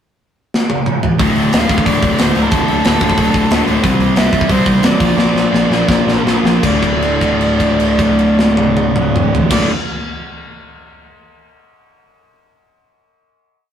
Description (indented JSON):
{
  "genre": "punk rock",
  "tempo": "154-182 BPM",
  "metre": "4/4",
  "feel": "straight",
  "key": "D minor",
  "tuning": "A4 = 437 Hz",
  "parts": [
    { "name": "tight metal drum kit", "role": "drums", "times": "0.5-9.6 s", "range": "crash cymbal, hi-hat, kick drum, snare drum, toms", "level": "-16 LUFS", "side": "equal", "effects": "none" },
    { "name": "crunchy overdriven guitar", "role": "riff", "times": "1.2-9.7 s", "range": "D2 to C4", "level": "-15 LUFS", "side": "left 3 dB", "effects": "none" },
    { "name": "distorted electric guitar", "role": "riff", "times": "1.2-9.7 s", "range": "D2 to C4", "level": "-20 LUFS", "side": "right 7 dB", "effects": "overdrive" },
    { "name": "fuzz picked electric bass", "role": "bass", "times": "1.2-9.7 s", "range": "D1 to C2", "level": "-20 LUFS", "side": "equal", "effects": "overdrive" },
    { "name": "nasal lead guitar with a parked wah", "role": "melody", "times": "1.5-9.7 s", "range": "A4 to F5", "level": "-20 LUFS", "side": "right 1 dB", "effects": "overdrive" }
  ],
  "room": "light reverb",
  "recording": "rough rehearsal-room recording",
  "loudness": "-11 LUFS",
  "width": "side -9 dB against mid",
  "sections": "0.0-1.2 pickup bar; 1.2-6.6 verse; 6.6-9.7 final chord",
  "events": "drum fill 0.5-1.2, 5.2-6.6; slowing down 3.8-6.6; held note 6.6-9.5",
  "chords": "0.0 N.C.; 1.2 D5; 3.8 C; 5.0 Bb; 6.6 D5"
}